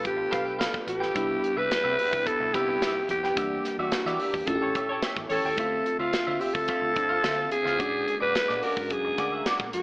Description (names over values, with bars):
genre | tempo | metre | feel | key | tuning
polished 1980s jazz-funk pop | 108 BPM | 4/4 | straight | D minor | A4 = 440 Hz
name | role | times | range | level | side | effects
breathy alto saxophone | melody | 0.0-9.8 s | F4 to B4 | -26 LUFS | equal | none
bell-like FM electric piano | accompaniment | 0.0-9.8 s | G3 to F#5 | -36 LUFS | left 1 dB | tremolo, wide subtle chorus
lush unison pad | sustained chords | 0.0-9.8 s | C3 to E5 | -37 LUFS | equal | chorus, phaser
clean electric guitar | riff | 0.0-9.8 s | F4 to G5 | -32 LUFS | right 1 dB | analog chorus
vintage muted fingered electric bass | bass | 0.0-9.8 s | A1 to E3 | -43 LUFS | equal | none
modern studio drum kit | drums | 0.0-9.8 s | hi-hat, kick drum, snare drum | -31 LUFS | equal | gated reverb
mellow horn section | second line | 4.6-5.5 s | G4 to C#5 | -33 LUFS | equal | none
room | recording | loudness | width
light reverb, small room ambience | AM radio sound | -24 LUFS | side -25 dB against mid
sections
0.0-9.8 A section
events
band accent 3.4-5.6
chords
0.0 G9; 1.2 Cmaj7; 3.4 Em7b5; 4.5 A7; 5.6 Dm9; 7.8 Bb7alt